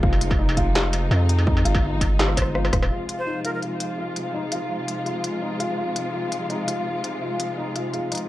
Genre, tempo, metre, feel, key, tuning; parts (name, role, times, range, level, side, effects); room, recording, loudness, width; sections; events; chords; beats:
half-time drum and bass; 167 BPM; 4/4; swing 53% on 16ths, half-time; F minor; A4 = 440 Hz
dark studio string section; sustained chords; 0.0-8.3 s; C3 to F4; -29 LUFS; left 1 dB; sidechain pumping, low-pass filter
felt-muted upright piano; arpeggios; 0.0-8.3 s; Eb4 to C5; -28 LUFS; left 2 dB; low-pass filter, tape echo
long sustained 808-style bass; bass; 0.0-2.9 s; Eb1 to F2; -21 LUFS; equal
electronic kick drum; drums; 0.0-2.8 s; -23 LUFS; equal
industrial drum kit; drums; 0.1-8.2 s; hi-hat, rim click, snare drum, struck metal; -26 LUFS; left 1 dB
breathy bright jazz flute; melody; 3.2-3.6 s; Bb4 to C5; -32 LUFS; equal; tape echo
studio reverb; dry, gritty hardware recording, transformer saturation; -21 LUFS; side -15 dB against mid
0.0-2.9 A section; 2.9-8.3 B section
drop 0.0-2.9; drum fill 2.2-2.9
0.0 Fm
| 0.03 0.39 0.75 1.11 | 1.47 1.83 2.19 2.55 | 2.91 3.27 3.63 3.98 | 4.34 4.70 5.06 5.42 | 5.78 6.14 6.50 6.86 | 7.22 7.58 7.94